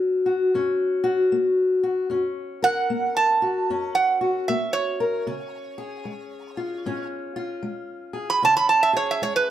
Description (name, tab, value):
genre	acoustic country blues, solo or duo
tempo	76 BPM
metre	4/4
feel	swing 63% on 8ths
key	F# major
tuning	A4 = 440 Hz
part	fingerpicked steel-string acoustic guitar	accompaniment	0.0-9.5 s	F#2 to A#4	-24 LUFS	left 2 dB	none
part	metal-body resonator slide guitar	melody	2.6-9.5 s	B4 to B5	-20 LUFS	right 4 dB	none
room	moderate studio reverb, RT60 0.7 s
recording	none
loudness	-20 LUFS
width	side -11 dB against mid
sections	0.0-9.5 A section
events	resonator guitar played with a steel bar solo 0.0-9.5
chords	0.0 F#; 5.3 C#